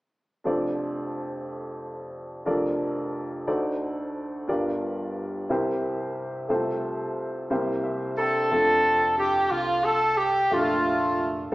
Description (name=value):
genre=gospel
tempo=60 BPM (dotted quarters)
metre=6/8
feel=straight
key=F major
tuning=A4 = 440 Hz
part: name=warm baby grand piano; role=accompaniment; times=0.4-11.5 s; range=F1 to A5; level=-27 LUFS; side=equal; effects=none
part: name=warm horn section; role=melody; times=8.2-11.5 s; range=A3 to A4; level=-21 LUFS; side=equal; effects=none
part: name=fingered electric bass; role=bass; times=8.5-11.5 s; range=F1 to C2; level=-41 LUFS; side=equal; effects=none
room=wet large studio reverb, RT60 1.3 s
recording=band playing live in one room, small speaker sound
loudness=-23 LUFS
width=side -19 dB against mid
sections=0.4-8.5 A section; 8.5-11.5 B section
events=grand piano fill 7.5-8.5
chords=0.4 F6; 2.5 Bbmaj7/F; 3.5 D7b9; 4.5 Gm7; 5.5 C7; 6.5 F/C; 7.5 C7; 8.5 F6; 10.5 Bbmaj7/F